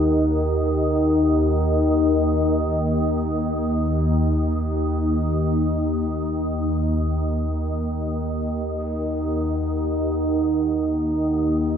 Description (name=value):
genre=world meditative, free-time meditation music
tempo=free time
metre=none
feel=none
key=unclear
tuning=A4 = 440 Hz
part: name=soft additive organ-like pad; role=drone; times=0.0-11.8 s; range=Eb2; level=-21 LUFS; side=equal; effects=ensemble chorus, built-in reverb
part: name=glass harmonica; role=texture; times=0.0-11.8 s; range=Eb4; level=-24 LUFS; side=left 1 dB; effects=none
room=wet huge ambient reverb, RT60 8.5 s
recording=in a vast, echoing space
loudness=-20 LUFS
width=side -8 dB against mid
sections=0.0-11.8 A section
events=none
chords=none